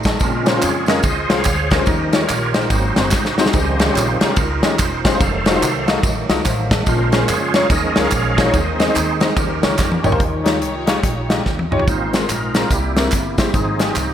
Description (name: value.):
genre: uptempo gospel.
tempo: 144 BPM.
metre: 4/4.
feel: swing 62% on 8ths.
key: unclear.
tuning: A4 = 444 Hz.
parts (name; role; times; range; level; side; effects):
clear concert grand piano; accompaniment; 0.0-14.1 s; Ab2 to A5; -21 LUFS; left 3 dB; analog chorus.
bright tonewheel organ; sustained chords; 0.0-14.1 s; Db3 to G5; -22 LUFS; right 3 dB; fast rotary speaker, chorus vibrato.
upright bass; bass; 0.0-14.1 s; Fb1 to F2; -24 LUFS; equal; none.
tambourine and handclaps; percussion; 0.0-14.1 s; none; -28 LUFS; right 2 dB; none.
natural country drum kit; drums; 0.1-14.1 s; hi-hat, kick drum, ride cymbal, snare drum, toms; -18 LUFS; equal; gated reverb.
warm studio string section; sustained chords; 10.2-11.9 s; Eb4 to Db5; -29 LUFS; equal; none.
room: moderate lush hall reverb, RT60 1.7 s, studio reverb.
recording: bright 1980s-style digital production.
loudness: -14 LUFS.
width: side -10 dB against mid.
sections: 0.0-10.2 A section; 10.2-11.9 B section; 11.9-14.1 C section.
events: tonewheel organ solo 0.0-10.2, 11.9-14.1; drum fill 3.1-3.5, 9.8-10.2, 11.5-11.9.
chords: 0.2 Bbm9; 1.9 Eb9; 2.7 Ab7; 3.5 Dbmaj9#11; 5.2 F7b9; 6.9 Bbm9; 7.7 Eb9sus4; 8.5 Ab/Eb; 9.4 Eb9; 11.9 Ab69; 12.7 C7; 13.5 Fm9/Ab.